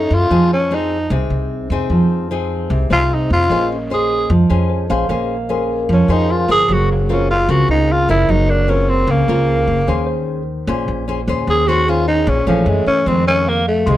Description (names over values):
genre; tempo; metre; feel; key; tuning
bossa nova; 150 BPM; 4/4; straight; Bb minor; A4 = 439 Hz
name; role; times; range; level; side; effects
growling tenor saxophone; melody; 0.0-14.0 s; F3 to Ab4; -16 LUFS; equal; none
nylon-string guitar; accompaniment; 0.0-14.0 s; F2 to C5; -19 LUFS; left 1 dB; none
tine electric piano; accompaniment; 0.0-0.1, 2.9-14.0 s; Ab4 to C6; -25 LUFS; right 2 dB; medium stereo tremolo
upright bass; bass; 0.0-14.0 s; Gb1 to Gb2; -19 LUFS; equal; none
room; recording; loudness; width
light reverb; none; -14 LUFS; side -13 dB against mid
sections
0.0-14.0 A section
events
tenor saxophone solo 0.0-14.0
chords
0.3 Fm7; 3.5 Bbm9; 6.7 Gbmaj9#11; 9.9 Eb7sus4; 12.7 Gbm7; 13.1 Fm7